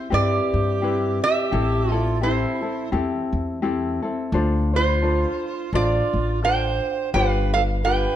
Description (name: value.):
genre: Hawaiian.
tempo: 86 BPM.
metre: 4/4.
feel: swing 58% on 8ths.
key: unclear.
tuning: A4 = 442 Hz.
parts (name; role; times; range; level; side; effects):
tenor ukulele; accompaniment; 0.0-8.2 s; C4 to C5; -25 LUFS; left 4 dB; none.
lap resonator guitar; melody; 0.1-8.2 s; C5 to G5; -24 LUFS; right 3 dB; none.
breathy bright bass recorder; second line; 0.1-8.2 s; E4 to C5; -27 LUFS; right 4 dB; none.
upright bass; bass; 0.1-8.1 s; G1 to G2; -23 LUFS; equal; none.
room: light reverb.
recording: none.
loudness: -20 LUFS.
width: side -11 dB against mid.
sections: 0.0-8.2 A section.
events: none.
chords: 0.0 Cmaj7; 1.5 Am7; 4.3 Dm7; 7.1 G7.